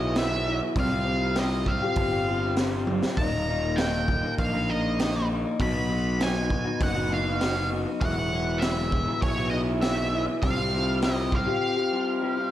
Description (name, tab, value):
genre	psychedelic rock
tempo	99 BPM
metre	4/4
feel	straight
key	unclear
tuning	A4 = 437 Hz
part	octave-fuzz lead guitar	melody	0.0-12.5 s	Db5 to B5	-30 LUFS	right 1 dB	wah, distortion, slapback echo
part	pedal harmonium	sustained chords	0.0-12.5 s	E4 to G5	-37 LUFS	right 5 dB	none
part	electric guitar through a small old amp	riff	0.0-12.5 s	Eb2 to G4	-28 LUFS	left 3 dB	flanger
part	fuzz picked electric bass	bass	0.0-11.5 s	Eb1 to C2	-29 LUFS	equal	overdrive
part	raw garage drum kit	drums	0.2-11.5 s	hi-hat, kick drum, snare drum, toms	-29 LUFS	right 1 dB	none
room	light reverb, studio reverb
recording	none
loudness	-23 LUFS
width	side -12 dB against mid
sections	0.0-12.5 A section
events	drum fill 2.9-3.2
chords	0.0 Eadd9; 0.8 Csus4; 3.2 Ebsus2; 5.6 B; 8.0 Eadd9; 10.4 Csus4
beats	0.16 | 0.77 1.37 1.97 2.58 | 3.18 3.78 4.39 4.99 | 5.60 6.20 6.80 7.41 | 8.01 8.62 9.22 9.82 | 10.43 11.03 11.63 12.23